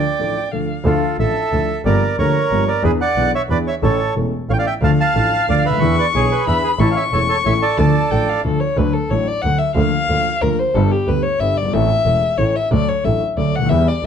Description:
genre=tango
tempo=182 BPM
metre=3/4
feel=rubato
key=D harmonic minor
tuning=A4 = 440 Hz
part: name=bandoneon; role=melody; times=0.0-8.4 s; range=E4 to A5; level=-19 LUFS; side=right 3 dB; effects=plate reverb
part: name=dark violin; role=second line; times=0.0-0.9, 4.8-14.1 s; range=G4 to C#6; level=-20 LUFS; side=left 4 dB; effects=none
part: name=warm concert grand piano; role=accompaniment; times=0.2-14.1 s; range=E1 to A4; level=-20 LUFS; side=left 2 dB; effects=none
part: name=clear double bass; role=bass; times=0.8-14.1 s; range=E1 to E2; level=-20 LUFS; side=right 2 dB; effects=none
room=moderate studio reverb, RT60 0.7 s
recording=none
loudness=-15 LUFS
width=side -8 dB against mid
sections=0.9-8.8 A section; 8.8-14.1 B section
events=break 0.0-0.9; violin solo 8.8-14.1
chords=0.0 Dm; 0.9 Dmadd9; 1.9 Gm7; 2.8 E7; 3.8 A; 4.8 Dm; 5.8 E7; 6.8 A; 7.8 Dm; 8.8 D; 9.8 Bb/D; 10.7 G; 11.7 A; 12.7 D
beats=0.19 0.53 | 0.86 1.19 1.52 | 1.85 2.18 2.51 | 2.84 3.17 3.50 | 3.83 4.16 4.49 | 4.82 5.15 5.48 | 5.81 6.14 6.47 | 6.80 7.13 7.45 | 7.78 8.11 8.45 | 8.78 9.11 9.44 | 9.77 10.09 10.42 | 10.75 11.07 11.40 | 11.73 12.06 12.39 | 12.72 13.05 13.38 | 13.71 14.04

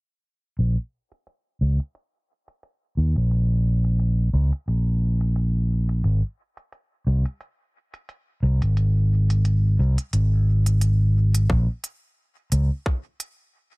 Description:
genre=ambient dub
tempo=88 BPM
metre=4/4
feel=swing 56% on 16ths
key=Bb minor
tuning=A4 = 440 Hz
part: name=fingered electric bass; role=bass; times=0.6-12.7 s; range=Ab1 to Eb2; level=-19 LUFS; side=equal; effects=none
part: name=electronic hi-hat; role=drums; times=0.6-13.4 s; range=none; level=-34 LUFS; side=right 2 dB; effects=overdrive
part: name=electronic kick drum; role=drums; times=11.5-13.0 s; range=none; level=-22 LUFS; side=equal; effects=overdrive
room=little or no reverb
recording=low-pass filter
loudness=-20 LUFS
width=side -33 dB against mid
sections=0.6-11.5 A section; 11.5-13.8 B section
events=filter sweep 0.6-11.5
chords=none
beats=| 0.59 1.27 1.95 2.63 | 3.31 4.00 4.68 5.36 | 6.04 6.72 7.40 8.09 | 8.77 9.45 10.13 10.81 | 11.49 12.18 12.86

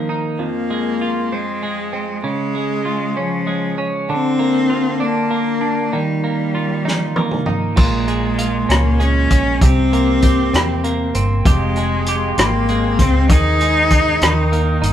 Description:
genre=six-eight pop ballad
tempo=65 BPM (dotted quarters)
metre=6/8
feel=straight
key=unclear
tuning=A4 = 440 Hz
part: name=clear cello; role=melody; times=0.0-14.8 s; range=F3 to Eb4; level=-20 LUFS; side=left 3 dB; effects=none
part: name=twelve-string electric guitar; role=accompaniment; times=0.0-14.9 s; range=F2 to Ab4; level=-20 LUFS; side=right 3 dB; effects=none
part: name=unplugged drum kit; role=drums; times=6.9-14.9 s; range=crash cymbal, hi-hat, kick drum, rim click, snare drum, toms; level=-17 LUFS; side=equal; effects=none
part: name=vintage muted fingered electric bass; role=bass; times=7.8-14.9 s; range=F1 to E2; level=-19 LUFS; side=equal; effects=none
part: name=warm woodwind section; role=sustained chords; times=11.5-14.9 s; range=Ab3 to Eb6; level=-25 LUFS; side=left 1 dB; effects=none
room=moderate studio reverb, RT60 0.8 s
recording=band playing live in one room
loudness=-15 LUFS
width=side -10 dB against mid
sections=0.0-7.8 A section; 7.8-14.9 B section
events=drum fill 6.9-7.8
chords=0.4 Fm; 2.2 Db; 4.1 Bb/D; 5.9 Ebadd9; 7.8 Bbm7; 9.6 C7; 11.5 Fmadd9; 13.3 Ab/Eb; 14.2 Eb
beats=| 0.40 1.32 | 2.25 3.17 | 4.09 5.01 | 5.93 6.86 | 7.78 8.70 | 9.62 10.54 | 11.46 12.38 | 13.30 14.22

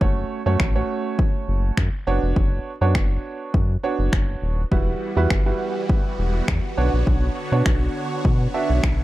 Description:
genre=dance-pop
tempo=102 BPM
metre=4/4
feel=straight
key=unclear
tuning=A4 = 440 Hz
part: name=clear grand piano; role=accompaniment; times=0.0-9.0 s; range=G3 to E5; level=-26 LUFS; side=right 4 dB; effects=sidechain pumping
part: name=round analog bass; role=bass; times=0.0-9.0 s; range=D#1 to B2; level=-21 LUFS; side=equal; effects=sidechain pumping
part: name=punchy analog drum machine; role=drums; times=0.0-9.0 s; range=finger snaps, kick drum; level=-21 LUFS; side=equal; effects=none
part: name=supersaw chords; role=sustained chords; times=4.7-9.0 s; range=D3 to C#5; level=-30 LUFS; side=equal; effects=phaser, sidechain pumping
room=digital ambience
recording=dark, warm production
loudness=-19 LUFS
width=side -16 dB against mid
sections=0.0-9.0 A section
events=none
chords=0.0 F#m; 2.1 Bmadd9; 4.7 Emadd9; 6.8 Bmadd9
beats=| 0.01 0.60 1.19 1.78 | 2.36 2.95 3.54 4.13 | 4.72 5.30 5.89 6.48 | 7.07 7.66 8.25 8.84

